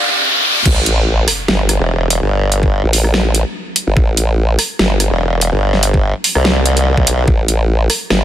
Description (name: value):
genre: heavy wobble dubstep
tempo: 145 BPM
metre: 4/4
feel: swing 54% on 16ths, half-time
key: A minor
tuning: A4 = 444 Hz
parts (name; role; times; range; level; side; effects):
- bright grand piano; melody; 0.0-0.6 s; F5; -32 LUFS; left 3 dB; none
- riser and sub drop; sound effects; 0.0-2.3 s; none; -16 LUFS; equal; none
- formant-sweep wobble bass; bass; 0.7-8.2 s; G1 to A1; -14 LUFS; equal; chorus, overdrive
- dubstep drum kit; drums; 0.7-8.2 s; crash cymbal, hi-hat, rim click, snare drum; -17 LUFS; right 1 dB; none
- electronic kick drum; drums; 0.7-7.4 s; none; -14 LUFS; equal; none
- formant-sweep wobble bass; bass; 1.8-7.3 s; E1 to C2; -13 LUFS; equal; chorus, overdrive
room: light reverb, digital ambience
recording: high-pass filter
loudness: -12 LUFS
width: side -11 dB against mid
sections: 0.7-8.2 A section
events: break 0.0-0.7; riser 0.0-0.7; drop 0.7-8.2; impact 0.7-2.3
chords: 0.0 N.C.; 0.7 A5